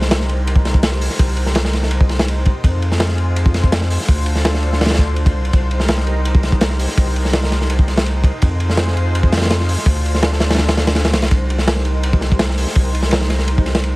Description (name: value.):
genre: drum and bass, jungle.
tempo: 166 BPM.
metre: 4/4.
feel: straight.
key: C dorian.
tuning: A4 = 440 Hz.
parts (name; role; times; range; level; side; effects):
lush unison pad; sustained chords; 0.0-14.0 s; D4 to C5; -25 LUFS; left 1 dB; chorus.
saturated sub bass; bass; 0.0-14.0 s; C2 to F2; -18 LUFS; equal; none.
crunchy breakbeat drum kit; drums; 0.0-13.9 s; hi-hat, kick drum, ride cymbal, snare drum; -16 LUFS; equal; none.
room: small room reverb.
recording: vinyl crackle.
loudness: -14 LUFS.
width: side -21 dB against mid.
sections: 0.0-14.0 A section.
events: none.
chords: 0.0 Cm7; 2.6 Fm7; 4.1 Dm7; 5.5 Cm7; 8.4 Fm7; 9.9 Dm7; 11.3 Cm7.